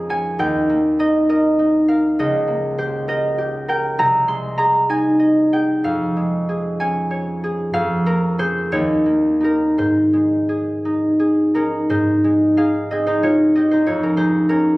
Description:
classical, solo harp piece; 55-68 BPM (dotted quarters); 6/8; rubato; Ab major; A4 = 437 Hz
concert harp; solo; 0.0-14.8 s; C2 to C6; -16 LUFS; equal
light reverb; recorded on a phone in the room, club reverb, compression; -16 LUFS; side -20 dB against mid
0.0-11.9 A section; 11.9-14.8 A section
0.4 Eb; 2.2 Eb7/Db; 4.0 Ab/C; 5.8 Db/F; 7.7 Bbm7/F; 8.7 Eb7; 9.8 Ab; 13.9 Db/F
| 0.41 1.30 | 2.19 3.09 | 3.99 4.91 | 5.85 6.79 | 7.74 8.71 | 9.76 10.85 | 11.92 12.90 | 13.87

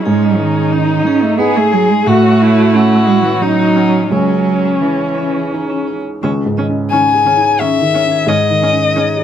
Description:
neoclassical piano and strings; 88 BPM; 3/4; rubato; C# minor; A4 = 441 Hz
muted violin; melody; 0.0-9.2 s; C#4 to G#5; -15 LUFS; left 5 dB
muted cello; second line; 0.0-9.0 s; D#3 to C#4; -15 LUFS; right 5 dB
felt-muted upright piano; accompaniment; 0.0-9.2 s; C#2 to G#4; -18 LUFS; right 1 dB
muted viola; accompaniment; 0.0-9.0 s; C#4 to G#4; -21 LUFS; right 2 dB
vibraphone with medium hard mallets; arpeggios; 0.1-9.2 s; C#4 to G#5; -22 LUFS; left 5 dB; tape echo
light reverb; close, detailed microphones; -11 LUFS; side -9 dB against mid
0.0-6.2 A section; 6.2-9.2 B section
0.1 G#sus4; 2.1 F#m/A; 4.1 C#sus2; 8.3 G#sus4
| 0.06 0.73 1.40 | 2.07 2.74 3.42 | 4.12 4.82 5.52 | 6.22 6.91 7.59 | 8.27 8.95

